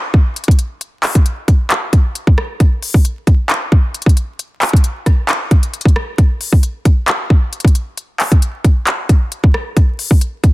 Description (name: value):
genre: hip hop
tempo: 134 BPM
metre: 4/4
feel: half-time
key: none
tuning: none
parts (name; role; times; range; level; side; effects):
- trap drum kit; drums; 0.1-10.5 s; handclaps, hi-hat, kick drum, rim click; -11 LUFS; equal; none
room: little or no reverb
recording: dense, heavily limited modern master, vinyl crackle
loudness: -12 LUFS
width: side -20 dB against mid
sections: 0.0-10.5 A section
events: none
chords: none